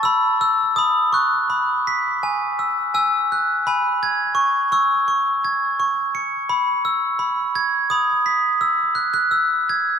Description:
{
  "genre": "children's music, lullaby",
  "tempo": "84 BPM",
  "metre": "3/4",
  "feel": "rubato",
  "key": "E major",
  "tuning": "A4 = 440 Hz",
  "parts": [
    { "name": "glockenspiel with brass mallets", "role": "solo", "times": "0.0-10.0 s", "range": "G#5 to C#7", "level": "-17 LUFS", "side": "equal", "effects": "none" }
  ],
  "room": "wet cathedral reverb, RT60 5.4 s",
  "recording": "in a vast, echoing space",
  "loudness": "-17 LUFS",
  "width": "side -7 dB against mid",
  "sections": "0.0-10.0 A section",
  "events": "none",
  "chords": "0.0 E5/B; 0.8 B5; 2.2 Eadd9; 4.4 C#m; 6.5 E/B; 7.9 N.C.; 8.6 Eadd9"
}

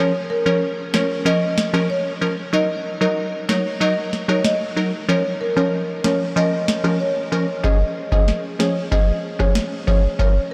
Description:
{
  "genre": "dancehall",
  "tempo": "94 BPM",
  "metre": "4/4",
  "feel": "straight",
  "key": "Bb minor",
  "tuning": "A4 = 440 Hz",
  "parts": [
    { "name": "marimba with medium mallets", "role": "melody", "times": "0.0-10.5 s", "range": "Bb4 to Eb5", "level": "-25 LUFS", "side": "equal", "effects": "delay" },
    { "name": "wavetable chord stab", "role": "accompaniment", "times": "0.0-10.3 s", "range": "F3 to Bb4", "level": "-24 LUFS", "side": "equal", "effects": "none" },
    { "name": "booming analog drum machine", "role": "drums", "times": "0.9-10.4 s", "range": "kick drum, rim click, snare drum", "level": "-25 LUFS", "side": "equal", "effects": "none" }
  ],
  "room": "wet huge ambient reverb, RT60 7.4 s",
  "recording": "dreamy mix soaked in reverb",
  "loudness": "-20 LUFS",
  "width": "mono",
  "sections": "0.0-10.5 A section",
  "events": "none",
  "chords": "0.0 Bbm; 2.5 Ebm; 5.1 Bbm; 7.6 Db"
}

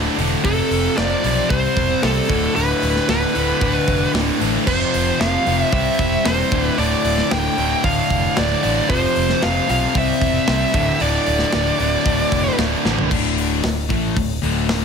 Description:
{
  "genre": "hard rock",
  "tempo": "114 BPM",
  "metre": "4/4",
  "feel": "straight",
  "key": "D minor",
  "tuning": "A4 = 440 Hz",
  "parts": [
    { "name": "distorted electric guitar", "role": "riff", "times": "0.0-14.8 s", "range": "D2 to C4", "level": "-25 LUFS", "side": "equal", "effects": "overdrive" },
    { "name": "high-gain distorted guitar", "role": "riff", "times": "0.0-13.1 s", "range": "D2 to C4", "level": "-24 LUFS", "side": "right 14 dB", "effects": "distortion" },
    { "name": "sludgy distorted guitar", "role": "riff", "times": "0.0-14.8 s", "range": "D2 to C4", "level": "-24 LUFS", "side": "left 12 dB", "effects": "overdrive" },
    { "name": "fingered electric bass", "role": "bass", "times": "0.0-14.8 s", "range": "D1 to C2", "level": "-24 LUFS", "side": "right 1 dB", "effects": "none" },
    { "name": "tight metal drum kit", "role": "drums", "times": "0.2-14.8 s", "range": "crash cymbal, hi-hat, kick drum, snare drum, toms", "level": "-24 LUFS", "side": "equal", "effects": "none" },
    { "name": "high-gain lead guitar", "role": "melody", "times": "0.4-12.6 s", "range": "A4 to G5", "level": "-21 LUFS", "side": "equal", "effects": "distortion, digital delay" }
  ],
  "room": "light reverb, small room reverb",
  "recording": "none",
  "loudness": "-16 LUFS",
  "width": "side -6 dB against mid",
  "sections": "0.0-13.1 A section; 13.1-14.8 B section",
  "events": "drum fill 12.8",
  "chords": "0.4 F; 1.5 C; 2.3 D5; 4.7 F5; 5.7 C; 6.5 Dm; 8.9 F5; 9.9 C; 10.7 D5"
}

